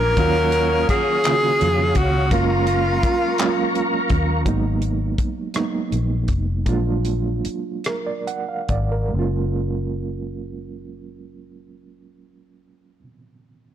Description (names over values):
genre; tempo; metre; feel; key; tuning
slow six-eight R&B; 45-56 BPM (dotted quarters); 6/8; straight; F# major; A4 = 441 Hz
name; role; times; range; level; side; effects
breathy tenor saxophone; melody; 0.0-4.1 s; E#4 to A#4; -20 LUFS; equal; slapback echo
reed electric piano; accompaniment; 0.0-13.7 s; C#3 to F#5; -25 LUFS; right 6 dB; fast tremolo
tonewheel organ; sustained chords; 0.0-4.4 s; A#4 to D#6; -26 LUFS; left 3 dB; chorus vibrato, slow rotary speaker
vintage muted fingered electric bass; bass; 0.0-13.0 s; E#1 to E#2; -22 LUFS; left 1 dB; tube saturation
clear horn section; stabs; 0.2-1.2 s; F#3 to A#4; -29 LUFS; left 3 dB; none
damped 70s drum kit; drums; 0.2-8.9 s; handclaps, hi-hat, kick drum, rim click; -24 LUFS; left 1 dB; soft clipping on snare
room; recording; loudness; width
light reverb, small room reverb; blown-out, overdriven recording, overdrive; -18 LUFS; side -10 dB against mid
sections
0.0-4.5 A section; 4.5-9.1 B section; 9.1-13.7 C section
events
slowing down 4.5-9.1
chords
0.2 D#m9; 2.3 F#maj7; 4.5 G#m9; 6.7 A#7b13; 9.1 F#maj9